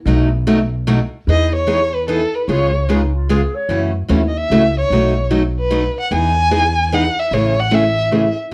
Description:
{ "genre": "acoustic string swing (jazz manouche)", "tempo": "149 BPM", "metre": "3/4", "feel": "swing 63% on 8ths", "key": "E major", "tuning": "A4 = 440 Hz", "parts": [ { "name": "picked steel-string acoustic guitar", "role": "accompaniment", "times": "0.1-8.5 s", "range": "B2 to G#4", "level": "-20 LUFS", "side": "equal", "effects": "none" }, { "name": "upright bass", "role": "bass", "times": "0.1-8.3 s", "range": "A1 to F#2", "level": "-21 LUFS", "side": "equal", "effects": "none" }, { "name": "warm violin", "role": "melody", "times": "1.3-8.4 s", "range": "A4 to G#5", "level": "-20 LUFS", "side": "equal", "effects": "none" }, { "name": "breathy clarinet", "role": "second line", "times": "2.9-3.8 s", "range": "D#4 to C#5", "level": "-25 LUFS", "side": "equal", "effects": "none" } ], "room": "moderate studio reverb, RT60 0.6 s", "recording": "worn, warbling old tape, cassette tape, warbly pitch drift", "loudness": "-16 LUFS", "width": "mono", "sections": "0.0-1.3 A section; 1.3-8.5 B section", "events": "none", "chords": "0.1 B7; 1.3 Emaj7; 2.5 C#7; 3.7 F#m7; 4.9 B7; 6.1 Emaj7; 7.3 Amaj7", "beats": "| 0.06 0.46 0.87 | 1.27 1.67 2.08 | 2.48 2.88 3.29 | 3.69 4.09 4.50 | 4.90 5.30 5.71 | 6.11 6.51 6.91 | 7.32 7.72 8.12 | 8.52" }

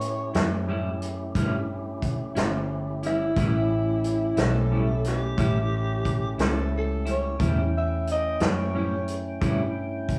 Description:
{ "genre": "slow blues", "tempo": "60 BPM (dotted quarters)", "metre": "12/8", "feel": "straight", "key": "A mixolydian", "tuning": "A4 = 439 Hz", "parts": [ { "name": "growling tenor saxophone", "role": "melody", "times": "0.0-9.2 s", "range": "E4 to E5", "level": "-31 LUFS", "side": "equal", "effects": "none" }, { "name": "tonewheel organ", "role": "sustained chords", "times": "0.0-10.2 s", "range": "A3 to G5", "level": "-36 LUFS", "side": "equal", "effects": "slow rotary speaker" }, { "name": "vintage muted fingered electric bass", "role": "bass", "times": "0.0-10.2 s", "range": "G1 to A2", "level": "-30 LUFS", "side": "equal", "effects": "none" }, { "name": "vintage drum kit", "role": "drums", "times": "0.0-10.2 s", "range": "hi-hat, kick drum, snare drum", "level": "-31 LUFS", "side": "equal", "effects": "none" }, { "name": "clean electric guitar", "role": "accompaniment", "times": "0.3-9.6 s", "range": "A2 to E4", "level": "-33 LUFS", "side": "equal", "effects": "tremolo" } ], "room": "moderate large studio reverb, RT60 1.0 s", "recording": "band playing live in one room, studio reverb", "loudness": "-26 LUFS", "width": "mono", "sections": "0.0-10.2 A section", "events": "none", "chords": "0.0 A7", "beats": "0.34 1.35 2.36 | 3.36 4.37 5.38 6.38 | 7.39 8.40 9.41" }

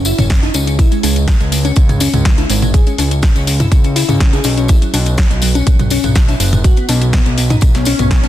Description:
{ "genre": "progressive house", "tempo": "123 BPM", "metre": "4/4", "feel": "straight", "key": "C# minor", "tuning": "A4 = 441 Hz", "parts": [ { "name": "fat analog bass", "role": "bass", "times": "0.0-8.3 s", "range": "F#1 to C#2", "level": "-16 LUFS", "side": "equal", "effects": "sidechain pumping" }, { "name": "tambourine", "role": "percussion", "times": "0.0-8.3 s", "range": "none", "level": "-25 LUFS", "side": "left 3 dB", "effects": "none" }, { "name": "glassy wavetable pluck", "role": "arpeggios", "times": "0.1-8.3 s", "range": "F#3 to G#4", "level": "-18 LUFS", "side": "left 1 dB", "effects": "chorus, sidechain pumping, dub echo" }, { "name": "house drum kit", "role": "drums", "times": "0.1-8.3 s", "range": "hi-hat, snare drum", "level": "-21 LUFS", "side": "left 1 dB", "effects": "sidechain pumping on hats" }, { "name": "electronic toms and congas", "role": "percussion", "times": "0.2-8.3 s", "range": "none", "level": "-20 LUFS", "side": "equal", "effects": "sidechain pumping on toms, sidechain pumping on perc" }, { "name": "electronic kick drum", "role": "drums", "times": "0.3-8.2 s", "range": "none", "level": "-11 LUFS", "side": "equal", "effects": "none" }, { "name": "swell", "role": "sound effects", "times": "7.7-8.3 s", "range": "none", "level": "-23 LUFS", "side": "right 1 dB", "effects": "none" } ], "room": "digital ambience", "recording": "dense, heavily limited modern master", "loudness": "-10 LUFS", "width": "side -13 dB against mid", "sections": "0.0-8.3 A section", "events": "swell 7.7-8.3", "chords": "0.0 F#5; 0.8 C#5; 4.7 B5", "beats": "0.30 | 0.79 1.28 1.77 2.25 | 2.74 3.23 3.72 4.21 | 4.69 5.18 5.67 6.16 | 6.64 7.13 7.62 8.11" }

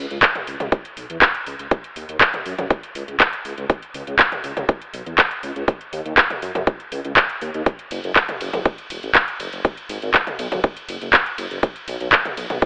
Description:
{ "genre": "melodic techno", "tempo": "121 BPM", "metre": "4/4", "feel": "straight", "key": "C# minor", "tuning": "A4 = 440 Hz", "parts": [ { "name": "swelling detuned saw bass", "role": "bass", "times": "0.0-12.6 s", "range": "E1 to F#2", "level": "-32 LUFS", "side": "equal", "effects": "sidechain pumping" }, { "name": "house drum kit", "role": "drums", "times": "0.1-12.7 s", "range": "handclaps, hi-hat, ride cymbal, toms", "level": "-21 LUFS", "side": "equal", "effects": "none" }, { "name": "electronic kick drum", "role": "drums", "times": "0.2-12.7 s", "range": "none", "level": "-21 LUFS", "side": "equal", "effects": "none" } ], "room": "light reverb", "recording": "telephone sound", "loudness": "-20 LUFS", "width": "mono", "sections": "0.0-12.7 A section", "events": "none", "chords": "none", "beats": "0.23 0.72 1.22 | 1.71 2.21 2.70 3.20 | 3.70 4.19 4.69 5.18 | 5.68 6.17 6.67 7.17 | 7.66 8.16 8.65 9.15 | 9.65 10.14 10.64 11.13 | 11.63 12.12 12.62" }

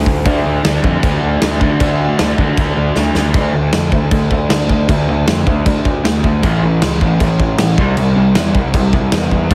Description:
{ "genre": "punk rock", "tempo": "156 BPM", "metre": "4/4", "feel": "straight", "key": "D minor from 3.3 s", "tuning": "A4 = 441 Hz", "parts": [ { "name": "crunchy overdriven guitar", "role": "riff", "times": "0.0-9.5 s", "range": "A2 to D4", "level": "-18 LUFS", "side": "equal", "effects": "none" }, { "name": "fuzz picked electric bass", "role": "bass", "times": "0.0-9.5 s", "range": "A1 to D3", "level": "-19 LUFS", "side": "equal", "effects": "overdrive" }, { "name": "big rock drum kit", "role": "drums", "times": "0.1-9.5 s", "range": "crash cymbal, kick drum, snare drum", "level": "-19 LUFS", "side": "equal", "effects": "none" } ], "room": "light reverb", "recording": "heavily compressed radio sound", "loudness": "-14 LUFS", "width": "mono", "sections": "0.3-3.3 A section; 3.3-9.5 B section", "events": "drum fill 3.0-3.3", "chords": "0.3 D5; 6.4 A; 7.8 C", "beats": "| 0.26 0.64 1.03 1.42 | 1.80 2.19 2.58 2.96 | 3.35 3.73 4.12 4.50 | 4.89 5.28 5.66 6.05 | 6.43 6.82 7.20 7.59 | 7.97 8.36 8.74 9.13 | 9.51" }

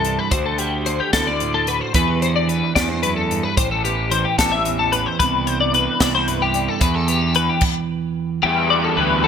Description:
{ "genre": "math rock and midwest emo", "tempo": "74 BPM (dotted quarters)", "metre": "6/8", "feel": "straight", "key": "E minor", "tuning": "A4 = 443 Hz", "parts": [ { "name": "twelve-string electric guitar", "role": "accompaniment", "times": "0.0-9.3 s", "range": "E2 to G4", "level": "-24 LUFS", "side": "right 9 dB", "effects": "none" }, { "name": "twelve-string electric guitar", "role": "arpeggios", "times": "0.0-9.3 s", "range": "G4 to E5", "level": "-19 LUFS", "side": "left 6 dB", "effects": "analog chorus" }, { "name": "fuzz fingered electric bass", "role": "bass", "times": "0.0-9.3 s", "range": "A1 to E2", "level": "-24 LUFS", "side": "right 1 dB", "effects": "overdrive" }, { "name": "crisp fusion drum kit", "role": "drums", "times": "0.0-7.7 s", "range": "crash cymbal, hi-hat, kick drum, snare drum", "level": "-22 LUFS", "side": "equal", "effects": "gated reverb" }, { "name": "crunchy overdriven guitar", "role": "riff", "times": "8.4-9.3 s", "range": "E3 to E4", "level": "-21 LUFS", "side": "left 1 dB", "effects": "ensemble chorus" } ], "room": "moderate plate reverb, RT60 2.5 s", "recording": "bright 1980s-style digital production", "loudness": "-16 LUFS", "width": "side -7 dB against mid", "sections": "0.0-8.4 A section", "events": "stop 7.6-8.4", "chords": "0.3 D7; 2.0 Em7; 3.6 Am9; 5.2 Cmaj9; 6.8 Em7; 8.4 Em11", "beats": "| 0.33 1.14 | 1.95 2.77 | 3.58 4.39 | 5.20 6.01 | 6.82 7.62 | 8.43 9.24" }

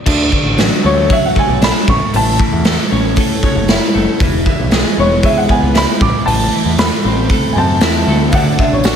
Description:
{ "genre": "indie rock", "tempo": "116 BPM", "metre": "4/4", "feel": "straight", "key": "unclear", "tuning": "A4 = 440 Hz", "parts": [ { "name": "twelve-string electric guitar", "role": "riff", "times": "0.1-9.0 s", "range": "A2 to E4", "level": "-16 LUFS", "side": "equal", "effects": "double-tracked left and right" }, { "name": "growling picked electric bass", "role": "bass", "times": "0.1-9.0 s", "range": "E1 to F#2", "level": "-17 LUFS", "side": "equal", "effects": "overdrive" }, { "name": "raw garage drum kit", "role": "drums", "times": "0.1-9.0 s", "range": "crash cymbal, hi-hat, kick drum, snare drum", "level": "-14 LUFS", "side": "equal", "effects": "none" }, { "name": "dark upright piano", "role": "melody", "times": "0.9-9.0 s", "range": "D4 to D6", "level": "-17 LUFS", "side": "equal", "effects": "slapback echo" }, { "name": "tambourine", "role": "percussion", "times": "8.8-9.0 s", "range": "none", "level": "-26 LUFS", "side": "right 17 dB", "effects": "none" } ], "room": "light reverb, studio reverb", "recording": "none", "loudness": "-11 LUFS", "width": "side -8 dB against mid", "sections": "0.1-9.0 A section", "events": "upright piano solo 0.1-9.0", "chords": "0.1 D; 1.9 A; 4.2 E; 6.0 Am; 8.3 D", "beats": "| 0.06 0.58 1.10 1.62 | 2.13 2.65 3.17 3.68 | 4.20 4.72 5.23 5.75 | 6.26 6.78 7.30 7.81 | 8.33 8.85" }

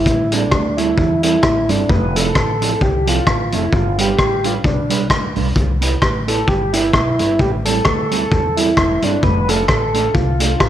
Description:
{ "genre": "ska", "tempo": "131 BPM", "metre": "4/4", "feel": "swing 56% on 8ths", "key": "unclear", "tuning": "A4 = 439 Hz", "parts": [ { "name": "tonewheel organ", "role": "melody", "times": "0.0-10.7 s", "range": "D4 to B4", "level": "-19 LUFS", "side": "equal", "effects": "overdrive, slow rotary speaker" }, { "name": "upright bass", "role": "bass", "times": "0.0-10.7 s", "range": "E1 to E2", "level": "-21 LUFS", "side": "left 1 dB", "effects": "none" }, { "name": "vintage drum kit", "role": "drums", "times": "0.1-10.7 s", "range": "hi-hat, kick drum, rim click", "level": "-18 LUFS", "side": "left 1 dB", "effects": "none" }, { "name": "mellow electric guitar", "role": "accompaniment", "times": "0.3-10.5 s", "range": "F3 to B4", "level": "-23 LUFS", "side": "right 8 dB", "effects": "tape echo" } ], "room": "moderate echo chamber reverb, RT60 1.7 s, small room ambience", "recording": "1960s-style stereo", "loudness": "-14 LUFS", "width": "side -11 dB against mid", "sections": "0.0-10.7 A section", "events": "none", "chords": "0.1 Am7; 1.9 Fmaj7; 3.7 G7; 5.6 Cmaj7; 7.4 Am7; 9.2 F6", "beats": "| 0.06 0.52 0.98 1.44 | 1.89 2.35 2.81 3.27 | 3.73 4.19 4.64 5.10 | 5.56 6.02 6.48 6.94 | 7.40 7.85 8.31 8.77 | 9.23 9.69 10.15 10.61" }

